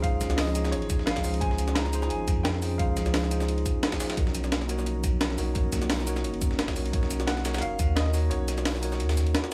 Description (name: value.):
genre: liquid drum and bass.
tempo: 174 BPM.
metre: 4/4.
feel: swing 54% on 16ths.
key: unclear.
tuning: A4 = 440 Hz.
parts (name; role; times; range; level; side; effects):
clear grand piano; melody; 0.0-3.3, 7.3-9.5 s; Db5 to Bb5; -38 LUFS; equal; dub echo.
tine electric piano; accompaniment; 0.0-9.5 s; Eb4 to Db5; -36 LUFS; equal; tape echo.
glassy FM pad; sustained chords; 0.0-9.5 s; F3 to C6; -39 LUFS; equal; ensemble chorus, built-in reverb, sidechain pumping.
saturated sub bass; bass; 0.0-9.3 s; F#1 to F2; -31 LUFS; equal; none.
breakbeat sampler-style drum kit; drums; 0.0-9.5 s; cabasa, hi-hat, snare drum; -33 LUFS; equal; none.
breakbeat sampler-style drum kit; drums; 0.0-9.4 s; hi-hat, ride cymbal, snare drum; -40 LUFS; equal; high-pass filter on cymbals, high-pass filter on snare, high-pass filter on hats.
electronic kick drum; drums; 0.0-7.9 s; none; -30 LUFS; equal; none.
room: light reverb.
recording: small room ambience.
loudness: -27 LUFS.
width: mono.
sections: 0.0-9.5 A section.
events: kick drops out 8.3-9.5.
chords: 0.0 Dbmaj9; 4.2 Bmaj9.